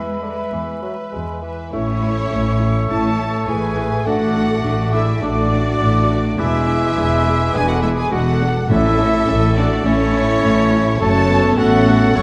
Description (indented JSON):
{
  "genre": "quick classical-period movement for symphony orchestra",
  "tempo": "103 BPM",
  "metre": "4/4",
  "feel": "straight",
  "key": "A major",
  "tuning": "A4 = 442 Hz",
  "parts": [
    { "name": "clear studio violin section", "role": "melody", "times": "0.0-12.2 s", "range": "C#5 to C#6", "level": "-29 LUFS", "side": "equal", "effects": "none" },
    { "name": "bright clarinet", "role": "second line", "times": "0.0-12.2 s", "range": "C#4 to C#5", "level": "-28 LUFS", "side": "equal", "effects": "none" },
    { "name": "rich studio violin section", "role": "second line", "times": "0.0-12.2 s", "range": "E4 to F#5", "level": "-29 LUFS", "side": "equal", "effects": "none" },
    { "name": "silver concert flute", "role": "second line", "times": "0.0-12.2 s", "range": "B5 to D6", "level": "-32 LUFS", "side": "equal", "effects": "none" },
    { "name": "warm oboe", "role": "second line", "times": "0.0-12.2 s", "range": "A4 to E5", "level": "-32 LUFS", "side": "equal", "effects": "none" },
    { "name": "rich studio viola section", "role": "accompaniment", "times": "0.0-12.2 s", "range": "G#3 to B4", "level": "-28 LUFS", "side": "equal", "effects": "none" },
    { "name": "warm bassoon", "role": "accompaniment", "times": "0.0-12.2 s", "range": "D3 to A3", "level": "-29 LUFS", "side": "equal", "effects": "none" },
    { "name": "mellow French horn section", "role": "sustained chords", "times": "0.0-12.2 s", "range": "G#3 to E5", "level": "-27 LUFS", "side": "equal", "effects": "none" },
    { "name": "rich studio cello section", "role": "bass", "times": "0.0-12.2 s", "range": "E2 to G#3", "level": "-24 LUFS", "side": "equal", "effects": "none" },
    { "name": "rich studio double bass section", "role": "bass", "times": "0.0-12.2 s", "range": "E1 to E2", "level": "-24 LUFS", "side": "equal", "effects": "none" },
    { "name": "mellow trumpet section", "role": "stabs", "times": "1.7-12.2 s", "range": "C#5 to C#6", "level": "-26 LUFS", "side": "equal", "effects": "none" },
    { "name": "timpani", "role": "percussion", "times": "8.7-9.5 s", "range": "A2", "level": "-26 LUFS", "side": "equal", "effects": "none" }
  ],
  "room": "moderate scoring stage reverb, RT60 1.7 s",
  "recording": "dark, warm production, vinyl crackle",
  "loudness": "-17 LUFS",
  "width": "mono",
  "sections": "0.0-1.7 A section; 1.7-12.2 B section",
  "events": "none",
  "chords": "0.0 E; 1.7 A; 4.1 D/A; 6.4 E7; 8.7 A; 11.0 F#m",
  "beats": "0.52 1.12 | 1.72 2.30 2.89 3.47 | 4.05 4.64 5.22 5.80 | 6.37 6.95 7.53 8.11 | 8.69 9.27 9.84 10.42 | 10.99 11.57 12.16"
}